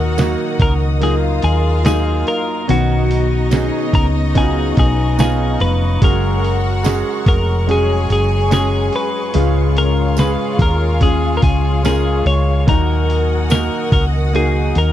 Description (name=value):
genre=pop ballad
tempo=72 BPM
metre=4/4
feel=straight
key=unclear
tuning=A4 = 441 Hz
part: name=twelve-string electric guitar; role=melody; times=0.0-14.9 s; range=Gb4 to Db5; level=-21 LUFS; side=left 2 dB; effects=none
part: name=warm studio violin section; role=second line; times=0.0-14.9 s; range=Eb4 to Ab5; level=-26 LUFS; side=left 2 dB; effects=none
part: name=bright concert grand piano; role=accompaniment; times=0.0-14.9 s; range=Ab2 to Bb4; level=-23 LUFS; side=right 9 dB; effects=none
part: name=warm studio string section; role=sustained chords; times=0.0-14.9 s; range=Cb4 to Eb6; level=-28 LUFS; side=equal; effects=none
part: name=fingerpicked steel-string acoustic guitar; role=arpeggios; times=0.0-14.9 s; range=Cb3 to Cb5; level=-24 LUFS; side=left 17 dB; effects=slapback echo
part: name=hollow-body short-scale fingered electric bass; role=bass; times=0.0-14.9 s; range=F1 to Eb2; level=-16 LUFS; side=equal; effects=none
part: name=lo-fi sampler-style drum kit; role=drums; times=0.2-14.9 s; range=hi-hat, kick drum, snare drum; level=-16 LUFS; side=equal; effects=none
part: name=tambourine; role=percussion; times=0.2-13.7 s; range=none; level=-34 LUFS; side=right 31 dB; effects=none
room=little or no reverb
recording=dry, close 1970s-style studio recording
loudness=-13 LUFS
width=side -12 dB against mid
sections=0.0-14.9 A section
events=none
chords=0.0 Ebmadd9; 2.7 Cbadd9; 6.0 Gbsus2; 9.3 Db; 12.7 Ebm